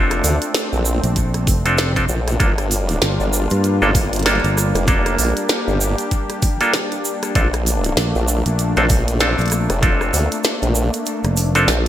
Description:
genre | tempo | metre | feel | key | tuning
glitch hop | 97 BPM | 4/4 | swing 59% on 16ths | unclear | A4 = 442 Hz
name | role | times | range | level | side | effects
warm analog pad | sustained chords | 0.0-11.9 s | G3 to G4 | -24 LUFS | equal | chorus, sidechain pumping
clav | stabs | 0.0-11.7 s | Bb3 to A4 | -21 LUFS | right 1 dB | sidechain pumping, ping-pong delay
formant-sweep wobble bass | bass | 0.0-11.9 s | F1 to D2 | -19 LUFS | equal | chorus
glitchy drum kit | drums | 0.1-11.8 s | hi-hat, rim click, snare drum | -22 LUFS | equal | studio reverb, gated reverb
egg shaker | percussion | 0.1-11.8 s | none | -27 LUFS | right 4 dB | none
fingered electric bass | bass | 1.0-11.7 s | F1 to G2 | -19 LUFS | equal | tube saturation
electronic kick drum | drums | 1.2-10.0 s | none | -18 LUFS | equal | overdrive, studio reverb
room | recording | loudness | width
light reverb | bright 1980s-style digital production | -15 LUFS | side -12 dB against mid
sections
0.0-11.9 A section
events
kick drops out 11.1-11.9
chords
0.0 Bbmaj9; 2.4 Gm7; 7.3 Bbmaj9

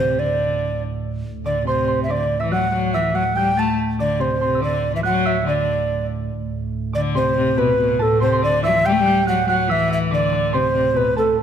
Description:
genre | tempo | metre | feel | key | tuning
medieval dance | 142 BPM | 3/4 | straight | D mixolydian | A4 = 440 Hz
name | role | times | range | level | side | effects
mellow hollow tenor recorder | melody | 0.0-11.4 s | A4 to A5 | -20 LUFS | right 1 dB | none
warm viola da gamba | second line | 0.0-11.4 s | A2 to A3 | -22 LUFS | left 4 dB | none
pipe organ, flutes | drone | 0.0-11.4 s | D2 to A2 | -26 LUFS | right 3 dB | none
concert harp | second line | 1.5-11.4 s | A5 to A6 | -27 LUFS | right 4 dB | none
room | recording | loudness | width
wet recital hall reverb, RT60 1.6 s | none | -17 LUFS | side -8 dB against mid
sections
0.0-6.3 A section; 6.3-11.4 B section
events
none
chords
none

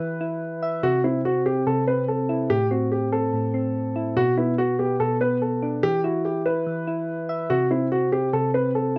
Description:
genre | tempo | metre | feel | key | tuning
hip hop | 144 BPM | 4/4 | half-time | unclear | A4 = 440 Hz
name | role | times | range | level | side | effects
dark baby grand piano | melody | 0.0-9.0 s | E4 to B4 | -26 LUFS | equal | none
soft electric-piano-like synth keys | accompaniment | 0.0-9.0 s | A2 to E5 | -27 LUFS | equal | chorus
room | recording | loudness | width
little or no reverb | worn, warbling old tape, cassette tape, warbly pitch drift | -23 LUFS | mono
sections
0.0-9.0 A section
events
none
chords
0.0 N.C.; 0.8 C6; 2.5 Am; 4.2 Bm; 5.8 N.C.; 7.5 C5

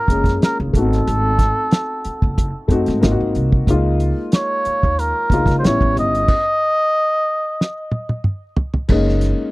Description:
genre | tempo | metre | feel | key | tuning
R&B, neo-soul | 92 BPM | 4/4 | swing 54% on 16ths | unclear | A4 = 440 Hz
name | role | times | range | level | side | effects
trumpet with cup mute | melody | 0.0-8.2 s | A4 to Eb5 | -19 LUFS | equal | none
dark upright piano | accompaniment | 0.0-9.5 s | G3 to Ab4 | -21 LUFS | left 2 dB | none
upright bass | bass | 0.1-9.3 s | Gb1 to Db3 | -19 LUFS | equal | none
cloth-damped thuddy drum kit | drums | 0.1-9.4 s | crash cymbal, hi-hat, kick drum, snare drum, toms | -17 LUFS | equal | none
room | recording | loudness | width
little or no reverb | dry, close 1970s-style studio recording | -15 LUFS | side -20 dB against mid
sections
0.0-8.9 A section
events
stop 6.3-8.9; drum fill 7.6-8.9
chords
0.0 Gbmaj9; 0.7 Ab7b9; 3.0 Ab7; 3.7 Db6; 5.6 A9; 6.3 N.C.; 8.9 Gb69

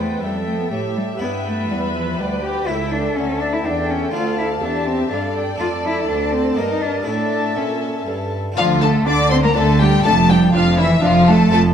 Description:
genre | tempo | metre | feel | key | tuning
classical, baroque-style concerto movement with solo episodes | 122 BPM | 3/4 | straight | D minor | A4 = 440 Hz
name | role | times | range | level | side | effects
rich chamber violin section | melody | 0.0-11.6 s | E5 to D6 | -24 LUFS | left 4 dB | none
warm cello | melody | 0.0-11.6 s | E3 to G4 | -20 LUFS | left 2 dB | none
rich chamber violin section | second line | 0.0-11.6 s | E4 to G5 | -25 LUFS | left 2 dB | none
harpsichord | accompaniment | 0.0-11.7 s | C#2 to F4 | -29 LUFS | right 1 dB | none
warm chamber viola section | accompaniment | 0.0-11.6 s | D4 to B4 | -26 LUFS | right 2 dB | none
rich chamber cello section | bass | 0.0-11.7 s | C#2 to D3 | -22 LUFS | right 3 dB | none
warm chamber double bass section | bass | 8.6-11.7 s | F1 to D2 | -20 LUFS | right 2 dB | none
room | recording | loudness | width
wet recital hall reverb, RT60 1.5 s | dark, warm production | -16 LUFS | side -8 dB against mid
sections
0.0-8.6 A section; 8.6-11.7 B section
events
none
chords
0.0 Em; 2.7 A7/C#; 4.1 Dm; 5.6 Dm/F; 6.6 Eb/G; 7.1 A; 8.6 Dm; 10.0 Dm/F

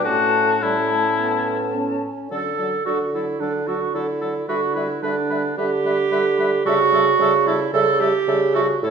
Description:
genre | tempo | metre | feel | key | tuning
quick classical-period movement for wind quintet | 110 BPM | 4/4 | straight | D major | A4 = 440 Hz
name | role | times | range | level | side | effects
concert flute | melody | 0.0-8.9 s | C#5 to A5 | -27 LUFS | left 10 dB | none
warm oboe | second line | 0.0-8.9 s | E4 to B4 | -26 LUFS | left 3 dB | none
clear clarinet | accompaniment | 0.0-8.9 s | C#4 to A4 | -21 LUFS | right 6 dB | none
warm French horn | accompaniment | 0.0-8.9 s | F#3 to C#4 | -30 LUFS | equal | none
mellow bassoon | bass | 0.0-8.9 s | A2 to D3 | -23 LUFS | right 1 dB | none
room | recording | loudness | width
wet recital hall reverb, RT60 1.5 s | recorded in a church or concert hall | -18 LUFS | side -6 dB against mid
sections
0.0-2.3 A section; 2.3-8.9 B section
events
none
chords
0.1 A; 2.3 D; 4.5 Em7/D; 6.7 A7/C#

